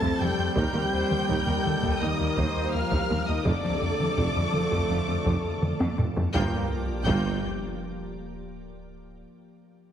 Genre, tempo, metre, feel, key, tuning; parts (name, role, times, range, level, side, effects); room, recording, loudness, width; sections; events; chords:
cinematic, hybrid orchestral and electronic film score; 83 BPM; 4/4; straight; G minor; A4 = 440 Hz
dark symphonic violin section; melody; 0.0-7.5 s; D6 to A6; -34 LUFS; left 2 dB
rich symphonic violin section; second line; 0.0-7.5 s; D5 to A5; -35 LUFS; left 1 dB
warm symphonic viola section; accompaniment; 0.0-7.5 s; Bb3 to C5; -35 LUFS; right 2 dB
bright trombone section; sustained chords; 0.0-6.7 s; F3 to C4; -35 LUFS; right 4 dB
dark French horn section; sustained chords; 0.0-6.7 s; D3 to A3; -33 LUFS; left 4 dB
soft additive organ-like pad; sustained chords; 0.0-6.7 s; F3 to Eb5; -36 LUFS; equal; ensemble chorus, built-in reverb
rubbery square bass; riff; 0.0-6.3 s; Eb2 to F3; -31 LUFS; left 2 dB
rich symphonic cello section; bass; 0.0-7.5 s; Eb2 to G2; -34 LUFS; right 2 dB
taiko ensemble; drums; 0.0-8.5 s; -31 LUFS; equal
clear symphonic double bass section; bass; 0.2-7.5 s; F1 to Eb2; -36 LUFS; right 3 dB
mellow tuba; bass; 0.2-7.4 s; F1 to Eb2; -35 LUFS; right 3 dB
sub drop; sound effects; 6.3-9.2 s; -36 LUFS; equal
wet scoring stage reverb, RT60 1.8 s; heavily compressed radio sound; -24 LUFS; side -9 dB against mid
0.0-6.3 A section; 6.3-9.2 B section
drum fill 5.6-6.3; impact 6.3-9.2
0.0 Fadd9; 0.6 Eb; 3.5 Dm/F; 6.3 Gm7